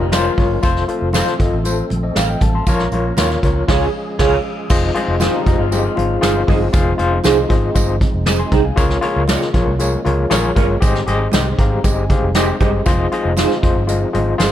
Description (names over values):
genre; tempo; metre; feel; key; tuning
uptempo 1960s-style soul; 118 BPM; 4/4; straight; unclear; A4 = 440 Hz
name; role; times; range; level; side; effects
overdriven tine electric piano; accompaniment; 0.0-14.5 s; Ab2 to C6; -19 LUFS; left 4 dB; medium tremolo
percussive tonewheel organ; sustained chords; 0.0-14.5 s; F3 to Bb4; -26 LUFS; right 1 dB; slow rotary speaker, overdrive, chorus vibrato
electric guitar through a small old amp; riff; 0.0-0.6, 5.2-6.6 s; Eb3 to G4; -25 LUFS; left 5 dB; none
vintage muted fingered electric bass; bass; 0.0-14.5 s; F1 to Eb2; -20 LUFS; equal; none
electric guitar through a small old amp; stabs; 0.1-14.5 s; Eb4 to F5; -22 LUFS; right 6 dB; ensemble chorus
vintage brush drum kit; drums; 0.1-14.5 s; crash cymbal, hi-hat, kick drum, snare drum; -18 LUFS; equal; none
congas; percussion; 0.1-14.5 s; none; -29 LUFS; right 1 dB; none
tambourine; percussion; 0.1-14.5 s; none; -31 LUFS; right 7 dB; none
room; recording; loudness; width
little or no reverb; dark, warm production; -14 LUFS; side -11 dB against mid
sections
0.0-4.7 A section; 4.7-14.5 B section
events
band accent 3.7-4.7; tine electric piano fill 11.3-12.9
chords
0.0 Bbm; 0.6 F; 2.7 Bbm; 3.7 Db; 4.7 Fm7; 8.8 Db6; 10.8 Fm7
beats
0.13 | 0.64 1.14 1.65 2.16 | 2.67 3.18 3.69 4.20 | 4.70 5.21 5.72 6.23 | 6.74 7.25 7.76 8.27 | 8.78 9.29 9.80 10.31 | 10.82 11.33 11.84 12.35 | 12.87 13.38 13.89 14.40